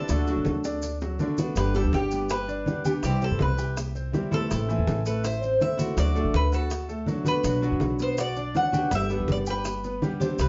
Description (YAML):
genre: latin, Cuban son and guajira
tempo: 163 BPM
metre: 4/4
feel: straight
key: G major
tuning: A4 = 440 Hz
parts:
  - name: Cuban tres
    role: melody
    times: 0.0-10.5 s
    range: G4 to F#5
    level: -32 LUFS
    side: equal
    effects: none
  - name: flamenco guitar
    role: accompaniment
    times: 0.0-10.5 s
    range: B2 to G4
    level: -33 LUFS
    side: equal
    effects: none
  - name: clear grand piano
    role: arpeggios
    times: 0.0-10.5 s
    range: D3 to G5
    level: -35 LUFS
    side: equal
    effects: none
  - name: upright bass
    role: bass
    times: 0.1-10.5 s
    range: G1 to G2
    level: -30 LUFS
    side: equal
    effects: none
  - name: bongos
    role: percussion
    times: 0.1-10.5 s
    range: none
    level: -38 LUFS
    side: equal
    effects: none
  - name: congas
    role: percussion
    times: 0.1-10.5 s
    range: none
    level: -34 LUFS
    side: equal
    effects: none
  - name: maracas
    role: percussion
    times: 0.1-10.5 s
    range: none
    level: -46 LUFS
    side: equal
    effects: none
room: wet studio reverb, RT60 0.6 s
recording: band playing live in one room, nothing above 7.6 kHz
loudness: -26 LUFS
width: mono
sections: 0.0-1.6 A section; 1.6-10.5 A section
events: drum fill 0.6-1.6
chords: 0.1 D; 1.6 G; 3.0 C; 4.5 Am; 6.0 D; 7.4 Bm; 8.9 G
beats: | 0.09 0.46 0.83 1.20 | 1.56 1.93 2.30 2.67 | 3.03 3.40 3.77 4.14 | 4.50 4.87 5.24 5.61 | 5.98 6.34 6.71 7.08 | 7.45 7.82 8.18 8.55 | 8.92 9.29 9.65 10.02 | 10.39